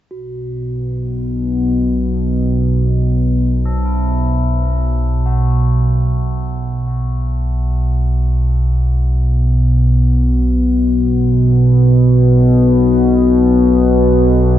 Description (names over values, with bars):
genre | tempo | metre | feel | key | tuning
dark ambient drone | free time | none | none | unclear | A4 = 441 Hz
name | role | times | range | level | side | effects
analog drone | drone | 0.3-14.6 s | B1 to B2 | -12 LUFS | equal | chorus
bronze singing bowl | texture | 0.1-14.6 s | F#4 | -36 LUFS | right 1 dB | none
tubular bells | arpeggios | 3.7-14.6 s | E4 to A4 | -31 LUFS | left 3 dB | ping-pong delay
room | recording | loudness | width
wet cathedral reverb, RT60 5.9 s | in a vast, echoing space, nothing above 7.8 kHz | -12 LUFS | side -12 dB against mid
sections
0.1-14.6 A section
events
fade-in on singing bowl 0.1-14.6; fade-in on tubular bells 0.1-14.6; filter sweep on synth drone 0.1-14.6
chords
0.1 B5